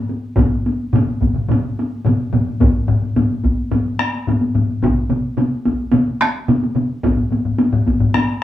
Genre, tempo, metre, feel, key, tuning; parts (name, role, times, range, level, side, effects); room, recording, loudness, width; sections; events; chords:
japanese traditional, taiko drum ensemble; 108 BPM; 4/4; straight
taiko ensemble; percussion; 0.1-8.3 s; -19 LUFS; left 1 dB
solo taiko drums; percussion; 0.4-8.3 s; -19 LUFS; left 3 dB
taiko ensemble; percussion; 0.4-6.9 s; -21 LUFS; right 2 dB
taiko ensemble; percussion; 0.4-8.0 s; -21 LUFS; equal
wet small room reverb, RT60 0.5 s; band playing live in one room, studio reverb; -15 LUFS; side -13 dB against mid
0.0-8.4 A section